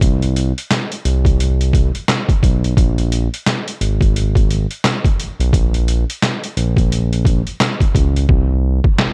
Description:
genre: hip hop, boom-bap hip-hop.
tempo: 87 BPM.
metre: 4/4.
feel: swing 60% on 16ths.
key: unclear.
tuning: A4 = 438 Hz.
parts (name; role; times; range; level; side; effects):
smooth gliding synth bass; bass; 0.0-8.8 s; Ab1 to Db2; -18 LUFS; equal; none.
trip hop sampler-style drum kit; drums; 0.0-9.1 s; handclaps, hi-hat, kick drum, snare drum; -18 LUFS; equal; overdrive.
room: little or no reverb.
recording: none.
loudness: -16 LUFS.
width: mono.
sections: 0.0-8.3 A section.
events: hi-hats muted 8.3-9.1.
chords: none.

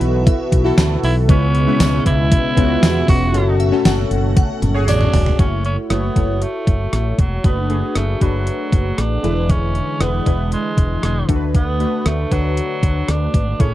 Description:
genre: 1980s-style pop.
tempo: 117 BPM.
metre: 4/4.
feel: straight.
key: F# minor.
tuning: A4 = 445 Hz.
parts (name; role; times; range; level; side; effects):
shimmering bell with halo; second line; 0.0-5.4 s; C#5 to F#5; -31 LUFS; right 1 dB; ensemble chorus, tape echo.
warm analog keys; accompaniment; 0.0-13.7 s; A2 to C#5; -21 LUFS; left 1 dB; chorus, phaser.
brassy analog pad; sustained chords; 0.0-5.4 s; B2 to F#4; -25 LUFS; equal; chorus.
fretless electric bass; bass; 0.0-13.7 s; E1 to E2; -19 LUFS; equal; none.
gated 80s digital drum machine; drums; 0.0-13.7 s; hi-hat, kick drum, rim click, snare drum, tambourine, toms; -16 LUFS; equal; gated reverb, gated reverb snare, overdrive.
tambourine; percussion; 0.8-5.0 s; none; -34 LUFS; left 10 dB; none.
growling tenor saxophone; melody; 1.0-13.7 s; F#3 to F#4; -24 LUFS; right 2 dB; none.
room: little or no reverb.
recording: dry, close 1970s-style studio recording.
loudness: -14 LUFS.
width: side -14 dB against mid.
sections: 0.0-5.4 A section; 5.4-13.7 B section.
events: drum fill 4.4-5.4.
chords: 0.0 Bsus4; 1.3 C#m7; 3.3 F#m; 5.4 F#m7; 7.4 Bm7/F#; 9.2 E7; 11.3 D6.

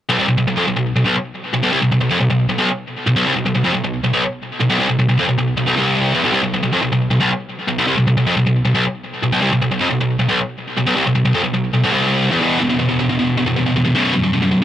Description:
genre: metal.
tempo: 156 BPM.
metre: 4/4.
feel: straight.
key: unclear.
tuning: A4 = 441 Hz.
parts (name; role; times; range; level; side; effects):
high-gain distorted guitar; solo; 0.1-14.6 s; B1 to E3; -14 LUFS; equal; distortion, cassette tape, tape echo.
room: light reverb.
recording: home recording on cassette.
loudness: -14 LUFS.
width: side -11 dB against mid.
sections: 0.1-12.4 A section; 12.4-14.6 B section.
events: none.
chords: 0.1 N.C.; 12.4 E5; 13.9 B5.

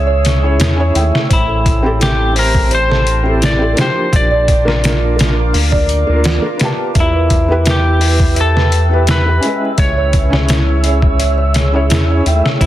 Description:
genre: trip hop.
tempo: 85 BPM.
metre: 4/4.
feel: straight.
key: unclear.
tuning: A4 = 441 Hz.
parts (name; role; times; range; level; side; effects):
felt-muted upright piano; accompaniment; 0.0-12.7 s; F3 to A5; -20 LUFS; equal; tremolo, tape echo.
deep dark ambient pad; sustained chords; 0.0-12.7 s; G#4 to E6; -24 LUFS; right 1 dB; chorus, built-in reverb, vintage 12-bit sampler grit.
music box; arpeggios; 0.0-12.7 s; E4 to F5; -22 LUFS; right 4 dB; tape echo.
round analog bass; bass; 0.0-12.7 s; A1 to E2; -14 LUFS; equal; none.
trip hop sampler-style drum kit; drums; 0.2-12.7 s; hi-hat, kick drum, snare drum; -15 LUFS; equal; none.
clean lap steel guitar; melody; 1.3-12.7 s; E4 to D5; -19 LUFS; left 1 dB; tape echo.
wind-like tuned noise texture; texture; 8.3-12.7 s; E5; -28 LUFS; equal; built-in reverb.
room: light reverb.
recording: dense, heavily limited modern master, vinyl crackle.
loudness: -11 LUFS.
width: side -13 dB against mid.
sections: 0.0-12.7 A section.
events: none.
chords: 0.0 C#m; 1.3 Am7; 4.1 Bb; 7.0 Em; 9.8 C#m.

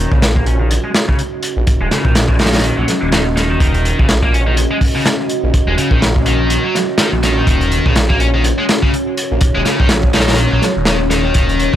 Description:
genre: breakbeat, breaks.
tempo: 124 BPM.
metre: 4/4.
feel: swing 58% on 16ths.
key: Eb minor.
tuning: A4 = 440 Hz.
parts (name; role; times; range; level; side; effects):
deep dark ambient pad; sustained chords; 0.0-11.8 s; Db4 to Eb5; -20 LUFS; equal; chorus, built-in reverb, vintage 12-bit sampler grit, sidechain pumping.
scooped high-gain guitar; riff; 0.0-11.8 s; Db3 to Db4; -19 LUFS; equal; distortion, low-pass filter, analog delay.
phased detuned saw bass; bass; 0.0-11.8 s; Eb1 to Bb1; -16 LUFS; equal; phaser, transformer saturation.
crunchy breakbeat drum kit; drums; 0.1-11.8 s; hi-hat, kick drum, snare drum; -15 LUFS; equal; none.
room: little or no reverb.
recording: dry, gritty hardware recording.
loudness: -12 LUFS.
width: side -11 dB against mid.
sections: 0.0-11.8 A section.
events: filter sweep on distorted electric guitar 0.0-11.8.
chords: 0.0 Ebm7.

